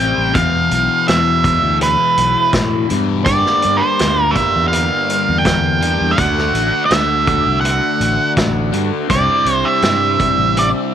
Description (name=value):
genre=psychedelic rock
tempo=82 BPM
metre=4/4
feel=straight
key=unclear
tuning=A4 = 444 Hz
part: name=octave-fuzz lead guitar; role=melody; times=0.0-10.7 s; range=B4 to G5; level=-16 LUFS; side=right 3 dB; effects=distortion, tape echo
part: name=fuzz guitar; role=riff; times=0.0-10.9 s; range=E2 to D4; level=-20 LUFS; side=left 12 dB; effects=distortion, phaser
part: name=fingered electric bass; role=bass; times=0.0-10.7 s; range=A1 to A2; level=-20 LUFS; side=equal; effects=none
part: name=vintage drum kit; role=drums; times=0.3-10.7 s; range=hi-hat, kick drum, snare drum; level=-20 LUFS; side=equal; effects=none
part: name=overdriven combo organ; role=sustained chords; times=3.3-10.9 s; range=A3 to G4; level=-24 LUFS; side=right 13 dB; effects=none
room=moderate spring reverb, RT60 1.8 s, small room ambience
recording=1960s-style stereo with parts hard left and right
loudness=-12 LUFS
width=side -9 dB against mid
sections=0.0-10.9 A section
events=none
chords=0.3 E5; 3.3 Gm; 6.2 D; 9.1 Cadd9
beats=| 0.35 1.07 1.80 2.53 | 3.26 3.98 4.71 5.44 | 6.17 6.91 7.64 8.37 | 9.10 9.84 10.57